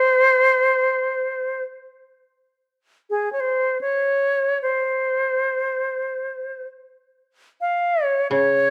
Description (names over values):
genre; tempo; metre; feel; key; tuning
japanese traditional, Japanese chamber music; free time; none; none; unclear; A4 = 440 Hz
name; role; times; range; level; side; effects
bright reedy silver concert flute; melody; 0.0-8.7 s; Ab4 to F5; -21 LUFS; equal; none
koto; accompaniment; 8.3-8.7 s; Db3; -26 LUFS; equal; none
room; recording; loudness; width
moderate recital hall reverb, RT60 1.5 s; none; -21 LUFS; mono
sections
0.0-8.7 A section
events
none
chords
none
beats
free time